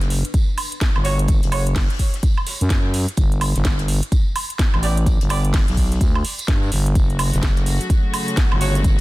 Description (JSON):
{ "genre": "bass house", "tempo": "127 BPM", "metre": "4/4", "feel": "swing 62% on 16ths", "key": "unclear", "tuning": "A4 = 440 Hz", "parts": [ { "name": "growling FM bass", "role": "bass", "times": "0.0-9.0 s", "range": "F#1 to G2", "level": "-19 LUFS", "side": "equal", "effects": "overdrive, sidechain pumping" }, { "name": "garage drum kit", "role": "drums", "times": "0.0-9.0 s", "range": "hi-hat, shaker, snare drum, woodblock", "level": "-26 LUFS", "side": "right 2 dB", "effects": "studio reverb" }, { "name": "warm soul drum kit", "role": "drums", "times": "0.0-9.0 s", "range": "hi-hat, snare drum, tambourine", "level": "-36 LUFS", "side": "equal", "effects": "high-pass filter on hats, studio reverb, high-pass filter on snare, high-pass filter on perc, high-pass filter on room" }, { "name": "electronic kick drum", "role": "drums", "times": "0.3-9.0 s", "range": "none", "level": "-18 LUFS", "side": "equal", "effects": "studio reverb" }, { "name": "mellow horn section", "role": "stabs", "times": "1.0-1.7, 4.8-5.4, 8.6-8.7 s", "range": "A3 to D5", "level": "-28 LUFS", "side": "right 3 dB", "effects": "sidechain pumping, tape echo" }, { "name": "dark studio string section", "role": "sustained chords", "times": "7.0-9.0 s", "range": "C#3 to F#4", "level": "-27 LUFS", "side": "left 1 dB", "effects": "sidechain pumping" } ], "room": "small room ambience", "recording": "dense, heavily limited modern master", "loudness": "-16 LUFS", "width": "side -19 dB against mid", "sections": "0.0-9.0 A section", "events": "filter sweep on FM bass 0.0-9.0", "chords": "0.0 N.C.; 3.2 G; 7.0 F#m" }